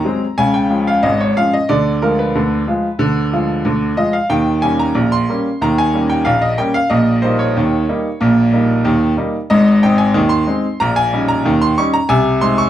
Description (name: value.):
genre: ragtime piano.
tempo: 92 BPM.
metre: 2/4.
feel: straight.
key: unclear.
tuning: A4 = 441 Hz.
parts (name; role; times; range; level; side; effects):
bright baby grand piano; solo; 0.0-12.7 s; Ab1 to Db6; -13 LUFS; equal; none.
room: wet studio reverb, RT60 0.6 s.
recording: heard from further back in the room.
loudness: -13 LUFS.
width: side -11 dB against mid.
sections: 0.0-12.7 A section.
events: none.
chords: 0.4 Db; 1.7 Ddim7; 4.3 Eb7; 6.9 Eb7/Bb; 9.5 Ab; 10.8 Eb7/Bb; 12.1 Ab/C.